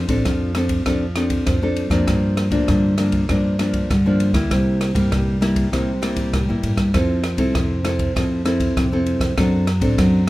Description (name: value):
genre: samba and choro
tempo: 99 BPM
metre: 4/4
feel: straight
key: F major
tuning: A4 = 440 Hz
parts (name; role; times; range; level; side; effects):
- nylon-string guitar; accompaniment; 0.0-10.3 s; G2 to A4; -20 LUFS; left 1 dB; none
- upright bass; bass; 0.0-10.3 s; A1 to Bb2; -21 LUFS; equal; none
- open jazz drum kit; drums; 0.1-10.1 s; kick drum, ride cymbal, rim click; -23 LUFS; equal; none
room: moderate studio ambience, RT60 0.5 s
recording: rough home demo mix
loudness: -17 LUFS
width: side -17 dB against mid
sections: 0.0-10.3 A section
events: none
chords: 0.0 Dm7; 2.1 Gm7; 4.5 C7; 6.9 Fmaj7; 9.4 D7